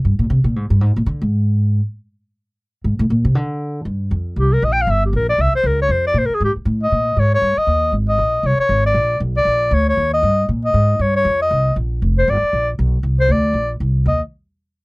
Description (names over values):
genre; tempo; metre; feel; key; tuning
jazz, small-group swing and bop; 236 BPM; 4/4; swing 59% on 8ths; Eb major; A4 = 440 Hz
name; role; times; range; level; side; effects
upright bass; bass; 0.0-14.2 s; F1 to D3; -17 LUFS; equal; none
breathy clarinet; melody; 4.4-14.2 s; G4 to G5; -16 LUFS; left 1 dB; none
room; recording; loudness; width
little or no reverb; dry, close 1970s-style studio recording; -15 LUFS; side -25 dB against mid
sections
0.0-3.9 A section; 3.9-12.0 B section; 12.0-14.1 C section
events
upright bass solo 0.0-3.9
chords
0.0 Abmaj9; 0.8 Bb7 (rootless); 1.8 N.C.; 2.8 Abadd9; 3.4 N.C.; 3.9 Eb69 (rootless); 4.9 Gm; 5.4 C7b9; 5.9 Fm; 6.9 Absus24; 7.4 Eb; 7.9 Abadd9; 9.0 Bb; 10.0 Eb; 11.0 Eb9 (rootless); 11.5 Bbsus24; 12.0 Fsus2; 12.5 N.C.; 13.0 Csus2; 13.5 Bbsus2; 14.1 N.C.